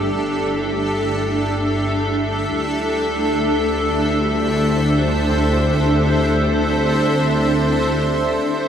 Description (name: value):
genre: ambient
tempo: free time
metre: none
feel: none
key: unclear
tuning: A4 = 440 Hz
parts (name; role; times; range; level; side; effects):
- granular cloud pad; sustained chords; 0.0-8.7 s; D4 to E5; -18 LUFS; equal; built-in reverb, shimmer reverb
- dark studio double bass section; bass; 0.0-8.7 s; G1 to D2; -22 LUFS; equal; none
room: wet lush hall reverb, RT60 2.7 s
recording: dark, warm production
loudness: -16 LUFS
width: side -8 dB against mid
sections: 0.0-8.4 A section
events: none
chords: 0.0 Gsus2; 2.5 D9sus4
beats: free time